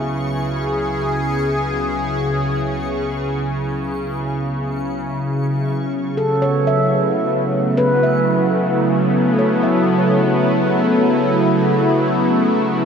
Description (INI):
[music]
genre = ambient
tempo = 75 BPM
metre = 4/4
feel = straight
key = unclear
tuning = A4 = 439 Hz
[part]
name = warm analog pad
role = sustained chords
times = 0.0-12.8 s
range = C#3 to G#4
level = -16 LUFS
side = equal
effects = chorus
[part]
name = handpan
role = arpeggios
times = 0.0-12.8 s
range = E4 to E5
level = -22 LUFS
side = equal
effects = analog delay
[part]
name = warm sub bass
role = bass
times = 0.0-5.7 s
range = C#2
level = -36 LUFS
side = equal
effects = none
[part]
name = backwards swelling texture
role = texture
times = 0.0-5.8 s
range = C#6 to C#7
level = -39 LUFS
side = right 1 dB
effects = built-in reverb, ensemble chorus
[sound]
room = wet lush hall reverb, RT60 2.5 s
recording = dreamy mix soaked in reverb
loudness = -16 LUFS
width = side -6 dB against mid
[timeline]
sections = 0.0-5.8 A section; 5.8-12.8 B section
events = fade-out on sub bass 0.0-5.8; fade-out on synth texture 0.0-5.8; fade-out on handpan 5.8-12.8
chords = 0.0 C#m; 5.8 F#m7; 12.1 Aadd9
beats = 0.18 0.97 1.76 | 2.54 3.34 4.14 4.95 | 5.76 6.57 7.37 8.16 | 8.96 9.76 10.55 11.35 | 12.13